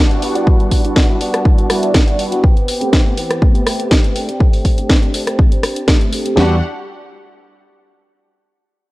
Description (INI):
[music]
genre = filtered disco house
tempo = 122 BPM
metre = 4/4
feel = swing 53% on 16ths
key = E minor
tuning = A4 = 439 Hz
[part]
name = mellow synth brass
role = accompaniment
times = 0.0-6.6 s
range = G3 to B4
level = -21 LUFS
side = right 1 dB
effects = chorus, phaser, sidechain pumping, low-pass filter
[part]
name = clear symphonic violin section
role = sustained chords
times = 0.0-6.6 s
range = G3 to G5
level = -27 LUFS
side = equal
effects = sidechain pumping, low-pass filter
[part]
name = direct-recorded clean electric guitar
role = riff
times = 0.0-6.6 s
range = E3 to G4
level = -23 LUFS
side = equal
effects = sidechain pumping, low-pass filter
[part]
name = house drum kit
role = drums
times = 0.1-6.3 s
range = hi-hat, rim click, snare drum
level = -18 LUFS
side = equal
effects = sidechain pumping on hats
[part]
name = house drum kit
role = drums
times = 0.5-6.5 s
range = kick drum, snare drum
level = -12 LUFS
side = equal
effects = none
[part]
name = fingered electric bass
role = bass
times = 6.4-6.6 s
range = E2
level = -15 LUFS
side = equal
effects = sidechain pumping, low-pass filter
[sound]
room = digital ambience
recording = dry, gritty hardware recording, transformer saturation, cassette tape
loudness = -12 LUFS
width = side -19 dB against mid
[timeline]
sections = 0.0-6.4 A section; 6.4-8.3 B section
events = filter sweep 0.0-6.4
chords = 0.0 Em9; 2.4 Am9; 4.2 D7sus4; 6.4 Em9